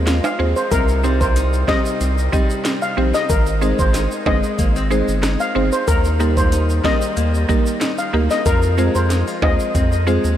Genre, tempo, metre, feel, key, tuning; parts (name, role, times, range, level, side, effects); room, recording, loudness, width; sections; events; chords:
dancehall; 93 BPM; 4/4; straight; Eb major; A4 = 440 Hz
flamenco guitar; arpeggios; 0.0-10.4 s; C3 to F4; -26 LUFS; left 5 dB
saturated sub bass; bass; 0.0-10.4 s; G1 to F2; -19 LUFS; equal
afro-pop drum kit; drums; 0.1-9.9 s; hi-hat, kick drum, rim click, snare drum; -21 LUFS; equal; overdrive
tube shaker and timbales; percussion; 0.1-10.4 s; -30 LUFS; right 5 dB
steel pan; melody; 0.2-9.5 s; Bb4 to F5; -22 LUFS; left 2 dB; diffuse ambient delay
mallet-like synth pluck; accompaniment; 0.4-10.2 s; Bb3 to Eb5; -23 LUFS; right 2 dB; chorus
moderate huge ambient reverb, RT60 8.4 s; dreamy mix soaked in reverb; -15 LUFS; side -11 dB against mid
0.0-10.4 A section
0.0 Fm; 0.7 Cm; 3.3 Ab; 5.9 Eb; 8.5 Fm